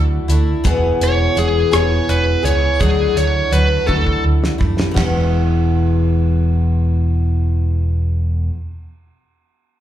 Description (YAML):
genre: folk rock and heartland rock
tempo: 56 BPM (dotted quarters)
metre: 6/8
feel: straight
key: E mixolydian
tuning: A4 = 443 Hz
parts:
  - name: picked twelve-string acoustic guitar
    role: accompaniment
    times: 0.0-8.6 s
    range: E2 to G#4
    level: -20 LUFS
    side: left 2 dB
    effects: plate reverb, slapback echo
  - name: fingered electric bass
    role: bass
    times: 0.0-8.5 s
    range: E1 to F#2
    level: -16 LUFS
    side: equal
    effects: none
  - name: damped 70s drum kit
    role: drums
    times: 0.3-5.1 s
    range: hi-hat, kick drum, ride cymbal, rim click, snare drum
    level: -21 LUFS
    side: equal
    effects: none
  - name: bluesy overdriven lead guitar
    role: melody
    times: 1.0-4.2 s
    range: G#4 to C#5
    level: -18 LUFS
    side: equal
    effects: distortion, plate reverb, slapback echo
room: light reverb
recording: live gig heard through the venue's PA, club reverb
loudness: -14 LUFS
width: side -11 dB against mid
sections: 0.0-5.0 A section; 5.0-9.3 B section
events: lead electric guitar solo 0.0-5.0; drum fill 3.9-5.0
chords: 0.0 Dadd9; 0.6 E; 2.8 Dadd9; 5.0 E